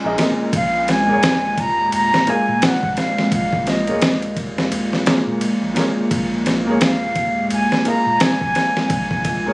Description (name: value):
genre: trip hop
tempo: 86 BPM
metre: 4/4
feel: swing 60% on 16ths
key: Bb minor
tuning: A4 = 439 Hz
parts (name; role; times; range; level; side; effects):
- reedy concert flute; melody; 0.0-9.5 s; Eb5 to Bb5; -19 LUFS; equal; none
- felt-muted upright piano; accompaniment; 0.0-9.5 s; Bb2 to F5; -23 LUFS; equal; tremolo
- warbly tape-like pad; sustained chords; 0.0-9.5 s; Bb2 to Db4; -23 LUFS; equal; chorus, built-in reverb, phaser
- soft dub sub bass; bass; 0.0-9.5 s; Bb1 to Bb2; -29 LUFS; equal; none
- dusty soul sampler-style drum kit; drums; 0.2-9.4 s; kick drum, ride cymbal, snare drum; -20 LUFS; equal; none
room: light reverb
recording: recorded on a phone in the room, club ambience, vinyl crackle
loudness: -15 LUFS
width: side -25 dB against mid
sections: 0.0-9.5 A section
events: none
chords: 0.0 Bbm7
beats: | 0.53 1.23 1.92 2.62 | 3.32 4.02 4.71 5.41 | 6.11 6.81 7.50 8.20 | 8.90